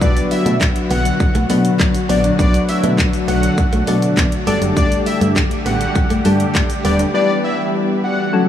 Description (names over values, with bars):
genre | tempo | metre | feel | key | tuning
dance-pop | 101 BPM | 4/4 | straight | B minor | A4 = 440 Hz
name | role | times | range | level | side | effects
fat analog lead | melody | 0.0-8.5 s | D5 to F#5 | -22 LUFS | left 1 dB | chorus, analog delay
soft electric-piano-like synth keys | accompaniment | 0.0-8.5 s | F#3 to D5 | -20 LUFS | left 4 dB | chorus, sidechain pumping
warm analog pad | sustained chords | 0.0-8.5 s | C#3 to G4 | -21 LUFS | right 1 dB | chorus, sidechain pumping
direct-recorded clean electric guitar | riff | 0.0-7.1 s | G3 to D4 | -26 LUFS | right 2 dB | none
solid FM bass | bass | 0.0-7.1 s | D#1 to B2 | -19 LUFS | equal | sidechain pumping
pop drum kit | drums | 0.0-7.1 s | handclaps, hi-hat, kick drum, shaker | -19 LUFS | equal | none
room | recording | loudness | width
moderate huge ambient reverb, RT60 7.8 s | dreamy mix soaked in reverb | -14 LUFS | side -10 dB against mid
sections
0.0-8.5 A section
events
silent gap 7.1-8.5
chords
0.0 Bm; 4.5 Gsus2; 7.1 Em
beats
| 0.01 0.61 1.20 1.80 | 2.39 2.98 3.58 4.17 | 4.77 5.36 5.96 6.55 | 7.14 7.74 8.33